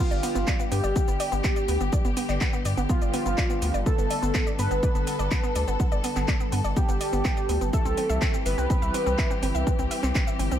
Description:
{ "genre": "melodic techno", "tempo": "124 BPM", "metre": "4/4", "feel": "straight", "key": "unclear", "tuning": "A4 = 440 Hz", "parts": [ { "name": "fat analog lead", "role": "melody", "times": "0.0-9.8 s", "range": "F4 to B4", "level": "-30 LUFS", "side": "right 1 dB", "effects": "analog chorus, sidechain pumping, analog delay" }, { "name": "muted studio string section", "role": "sustained chords", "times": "0.0-10.6 s", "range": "D3 to A4", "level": "-32 LUFS", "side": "left 2 dB", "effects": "sidechain pumping" }, { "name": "wide unison pluck", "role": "arpeggios", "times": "0.0-10.6 s", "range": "B3 to E5", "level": "-32 LUFS", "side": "right 1 dB", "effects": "sidechain pumping, analog delay" }, { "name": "round analog bass", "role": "bass", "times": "0.1-10.6 s", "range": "G1 to G2", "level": "-27 LUFS", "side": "equal", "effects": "tube saturation, sidechain pumping" }, { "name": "house drum kit", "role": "drums", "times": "0.1-10.6 s", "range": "handclaps, hi-hat, shaker", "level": "-33 LUFS", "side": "equal", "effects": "sidechain pumping on hats, sidechain pumping on cymbals, sidechain pumping on perc" }, { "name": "electronic kick drum", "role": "drums", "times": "0.5-10.2 s", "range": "none", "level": "-25 LUFS", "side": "equal", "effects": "none" } ], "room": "light reverb, digital ambience", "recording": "echo-heavy mix", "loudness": "-22 LUFS", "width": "side -10 dB against mid", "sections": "0.0-10.6 A section", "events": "none", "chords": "0.0 G; 7.7 C" }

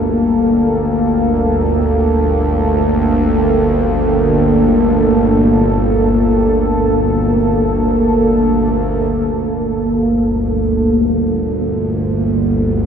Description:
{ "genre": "dark ambient drone", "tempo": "free time", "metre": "none", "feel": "none", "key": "G minor", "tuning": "A4 = 440 Hz", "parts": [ { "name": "deep dark ambient pad", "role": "sustained chords", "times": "0.0-12.9 s", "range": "Bb3 to G5", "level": "-14 LUFS", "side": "right 1 dB", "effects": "chorus, built-in reverb" }, { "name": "bowed-like drone", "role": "drone", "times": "0.0-12.9 s", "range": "G1 to D2", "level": "-16 LUFS", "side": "equal", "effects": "built-in reverb" } ], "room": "wet huge ambient reverb, RT60 7.1 s", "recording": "in a vast, echoing space, faint mains hum", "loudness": "-12 LUFS", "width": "side -7 dB against mid", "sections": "0.0-9.1 A section; 9.1-12.9 B section", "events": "none", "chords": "0.0 Gmadd9" }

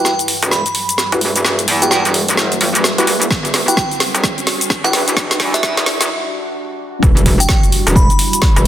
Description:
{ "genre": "bass house", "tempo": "129 BPM", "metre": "4/4", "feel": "swing 62% on 16ths", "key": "E minor", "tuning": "A4 = 439 Hz", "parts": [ { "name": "glassy synth bell", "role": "melody", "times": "0.0-8.6 s", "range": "E5 to B5", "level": "-21 LUFS", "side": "right 2 dB", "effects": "chorus, tremolo, tape echo" }, { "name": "deep dark ambient pad", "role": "sustained chords", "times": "0.0-8.7 s", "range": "G3 to F#4", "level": "-26 LUFS", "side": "equal", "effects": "chorus, built-in reverb, sidechain pumping" }, { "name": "percussive organ stab", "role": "stabs", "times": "0.0-5.7 s", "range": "E4 to B4", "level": "-24 LUFS", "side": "left 1 dB", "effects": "chorus, sidechain pumping, tape echo" }, { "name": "riser and impact", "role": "sound effects", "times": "0.2-8.7 s", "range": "none", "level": "-28 LUFS", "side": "right 1 dB", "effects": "none" }, { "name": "garage drum kit", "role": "drums", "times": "0.1-8.6 s", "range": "hi-hat, shaker, snare drum", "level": "-16 LUFS", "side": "equal", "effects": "none" }, { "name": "metallic wobble bass", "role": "bass", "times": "0.4-8.7 s", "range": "E1 to E2", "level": "-17 LUFS", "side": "equal", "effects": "distortion, chorus, tube saturation, sidechain pumping, high-pass filter" }, { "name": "electronic kick drum", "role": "drums", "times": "3.3-8.5 s", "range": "none", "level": "-14 LUFS", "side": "equal", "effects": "overdrive" } ], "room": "light reverb", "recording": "dense, heavily limited modern master, high-pass filter", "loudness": "-12 LUFS", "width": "side -12 dB against mid", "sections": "0.0-7.0 A section; 7.0-8.7 B section", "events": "build-up 0.0-7.0; drum fill 0.0-6.1; filter sweep on synth stab 0.0-7.0; filter sweep on ambient pad 0.0-7.0; riser 0.2-6.1; break 6.1-7.0; drop 7.0-8.7; impact 7.0-8.7", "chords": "0.0 Emadd9" }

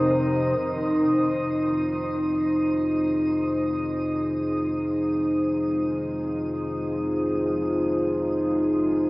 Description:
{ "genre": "dark ambient drone", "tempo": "free time", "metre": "none", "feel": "none", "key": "F minor", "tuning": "A4 = 440 Hz", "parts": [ { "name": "dark analog pad", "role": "sustained chords", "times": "0.0-9.1 s", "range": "F3 to C5", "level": "-22 LUFS", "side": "equal", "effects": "lush chorus, shimmer reverb" }, { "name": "deep rumbling drone", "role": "drone", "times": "0.0-9.1 s", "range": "F2 to C3", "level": "-35 LUFS", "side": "equal", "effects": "built-in reverb, wide subtle chorus" }, { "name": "bubbling stepped-filter texture", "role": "texture", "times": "0.0-0.6 s", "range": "Bb4", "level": "-41 LUFS", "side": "right 1 dB", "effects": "chorus, built-in reverb, shimmer reverb" } ], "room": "wet lush hall reverb, RT60 3.0 s", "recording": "dreamy mix soaked in reverb, small speaker sound", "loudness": "-22 LUFS", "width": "side -21 dB against mid", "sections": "0.6-9.1 A section", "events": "none", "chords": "0.0 Bb5/F; 0.6 Fm7" }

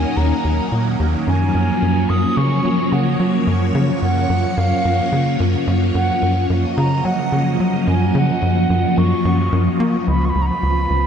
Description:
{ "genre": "ambient, sequencer-driven space music", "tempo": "109 BPM", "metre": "4/4", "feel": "straight", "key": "F# major", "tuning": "A4 = 441 Hz", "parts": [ { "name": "mellow wooden flute", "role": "melody", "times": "0.0-11.1 s", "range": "E#5 to D#6", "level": "-23 LUFS", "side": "right 2 dB", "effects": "tape echo" }, { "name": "phased string machine", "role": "sustained chords", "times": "0.0-11.1 s", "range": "D#3 to D#5", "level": "-19 LUFS", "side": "equal", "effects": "ensemble chorus, phaser" }, { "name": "tight sequencer bass", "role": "riff", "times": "0.0-11.1 s", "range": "C#2 to A#3", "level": "-18 LUFS", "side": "equal", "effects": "tape echo" } ], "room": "wet huge ambient reverb, RT60 7.5 s", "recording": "dark, warm production", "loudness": "-15 LUFS", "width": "side -8 dB against mid", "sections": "0.0-11.1 A section", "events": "none", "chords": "0.0 D#m7; 1.3 F#maj7; 10.1 C#7" }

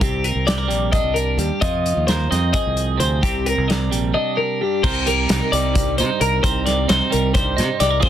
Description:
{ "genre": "math rock and midwest emo", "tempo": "262 BPM (eighths)", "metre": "7/8", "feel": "straight", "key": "C minor", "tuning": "A4 = 441 Hz", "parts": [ { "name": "twelve-string electric guitar", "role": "accompaniment", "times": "0.0-8.1 s", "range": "G2 to Bb4", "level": "-24 LUFS", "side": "right 11 dB", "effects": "none" }, { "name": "twelve-string electric guitar", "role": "arpeggios", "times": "0.0-8.1 s", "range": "G4 to Eb5", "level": "-21 LUFS", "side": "left 3 dB", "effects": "wide subtle chorus" }, { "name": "modern bright fingered electric bass", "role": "bass", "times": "0.0-8.1 s", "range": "Bb1 to C3", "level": "-22 LUFS", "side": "equal", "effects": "none" }, { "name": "modern studio drum kit", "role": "drums", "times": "0.0-8.1 s", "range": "crash cymbal, hi-hat, kick drum, snare drum", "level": "-22 LUFS", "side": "left 1 dB", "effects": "none" } ], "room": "light reverb", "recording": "dense, heavily limited modern master", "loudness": "-16 LUFS", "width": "side -10 dB against mid", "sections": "0.0-4.8 A section; 4.8-8.1 B section", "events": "none", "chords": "0.0 Cm9; 1.6 Fm7; 3.2 Cm9; 4.8 Cm7" }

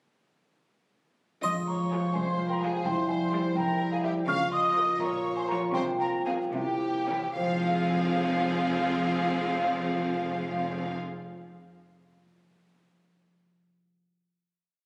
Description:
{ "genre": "cinematic, playful, whimsical film cue", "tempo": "71-85 BPM (dotted quarters)", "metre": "6/8", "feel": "straight", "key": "F minor", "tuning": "A4 = 441 Hz", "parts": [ { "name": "xylophone with soft rubber mallets", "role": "melody", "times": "1.4-10.9 s", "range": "C5 to Db6", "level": "-38 LUFS", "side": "equal", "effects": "none" }, { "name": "hollow concert flute", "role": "second line", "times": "1.4-10.9 s", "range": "F5 to F6", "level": "-34 LUFS", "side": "equal", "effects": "none" }, { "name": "rich studio violin section", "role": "second line", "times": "1.4-10.9 s", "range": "G4 to F5", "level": "-38 LUFS", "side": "equal", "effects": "none" }, { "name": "mellow French horn section", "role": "sustained chords", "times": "1.4-10.9 s", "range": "G3 to F4", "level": "-35 LUFS", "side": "equal", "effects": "none" }, { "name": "concert harp", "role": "arpeggios", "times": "1.4-11.2 s", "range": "Bb2 to Ab5", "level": "-36 LUFS", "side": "equal", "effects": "none" }, { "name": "rich studio cello section", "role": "bass", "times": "1.4-10.9 s", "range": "C2 to Db3", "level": "-40 LUFS", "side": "equal", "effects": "none" }, { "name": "rich studio double bass section", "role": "bass", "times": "1.4-10.9 s", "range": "F1 to Db2", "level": "-45 LUFS", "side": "equal", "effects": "none" }, { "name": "triangle", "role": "percussion", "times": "1.4-2.3 s", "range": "none", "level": "-53 LUFS", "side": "equal", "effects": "none" }, { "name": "rich studio violin section", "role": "melody", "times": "1.9-10.9 s", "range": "G4 to Bb4", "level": "-44 LUFS", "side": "equal", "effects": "none" }, { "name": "rich studio viola section", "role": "accompaniment", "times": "1.9-10.9 s", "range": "E3 to F4", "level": "-36 LUFS", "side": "equal", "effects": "none" } ], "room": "moderate scoring stage reverb, RT60 2.1 s", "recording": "recorded on a phone in the room, club reverb, compression", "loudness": "-28 LUFS", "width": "mono", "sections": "1.4-7.4 A section; 7.4-10.7 final chord", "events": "slowing down 3.6-7.4", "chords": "1.4 Fm; 2.9 C/F; 4.3 Bbm/Db; 5.0 Bbm; 5.8 C7sus4; 6.5 C7b9; 7.4 Fm" }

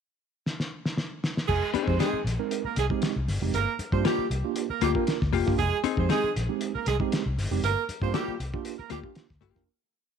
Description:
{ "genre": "funk", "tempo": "117 BPM", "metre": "4/4", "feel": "straight", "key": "F dorian", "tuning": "A4 = 440 Hz", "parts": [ { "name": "cloth-damped thuddy drum kit", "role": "drums", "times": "0.5-9.7 s", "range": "crash cymbal, hi-hat, kick drum, snare drum", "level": "-31 LUFS", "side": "left 1 dB", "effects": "none" }, { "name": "warm horn section", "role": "second line", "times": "1.5-9.0 s", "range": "G3 to C5", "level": "-30 LUFS", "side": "right 9 dB", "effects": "none" }, { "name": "vintage muted fingered electric bass", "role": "bass", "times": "1.5-9.7 s", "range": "F1 to G2", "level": "-28 LUFS", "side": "left 1 dB", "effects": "none" }, { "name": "vintage hollow-body jazz guitar", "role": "accompaniment", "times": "1.7-9.6 s", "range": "Bb3 to Ab4", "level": "-28 LUFS", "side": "left 12 dB", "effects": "none" }, { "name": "mellow tine electric piano", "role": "stabs", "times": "1.9-9.7 s", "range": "Ab3 to Bb4", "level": "-32 LUFS", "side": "right 14 dB", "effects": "medium stereo tremolo" } ], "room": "light reverb, small room ambience", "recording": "1960s-style stereo with parts hard left and right", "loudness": "-25 LUFS", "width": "side -7 dB against mid", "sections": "0.0-1.5 pickup bar; 1.5-9.7 groove", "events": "drum fill 0.5-1.5; fade-out 7.6-9.7", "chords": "0.0 N.C.; 1.5 Fm7; 3.5 Gm7; 5.6 Fm7; 7.6 Gm7" }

